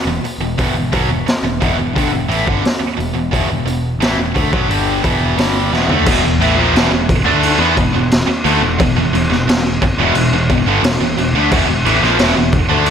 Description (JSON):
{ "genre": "hard rock", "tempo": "88 BPM", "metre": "4/4", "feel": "straight", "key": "unclear", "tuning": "A4 = 440 Hz", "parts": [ { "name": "cranked stack guitar", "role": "riff", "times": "0.1-12.9 s", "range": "E2 to D4", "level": "-19 LUFS", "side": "left 8 dB", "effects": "overdrive, slapback echo" }, { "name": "tight distorted guitar", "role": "riff", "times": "0.1-12.9 s", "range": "E2 to D4", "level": "-18 LUFS", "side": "right 10 dB", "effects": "distortion, slapback echo" }, { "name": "picked electric bass", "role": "bass", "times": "0.1-12.9 s", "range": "E1 to E2", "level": "-20 LUFS", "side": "equal", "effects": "none" }, { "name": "raw garage drum kit", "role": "drums", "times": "0.2-12.9 s", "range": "crash cymbal, hi-hat, kick drum, snare drum, toms", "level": "-17 LUFS", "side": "equal", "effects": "none" }, { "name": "high-gain distorted guitar", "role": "riff", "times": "6.1-12.9 s", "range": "E2 to D4", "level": "-20 LUFS", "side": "right 1 dB", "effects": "distortion, slapback echo" } ], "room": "moderate lush hall reverb, RT60 2.3 s", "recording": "big arena sound", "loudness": "-12 LUFS", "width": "side -8 dB against mid", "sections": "0.0-6.1 A section; 6.1-12.9 B section", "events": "drum fill 5.7-6.1", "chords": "0.0 E5" }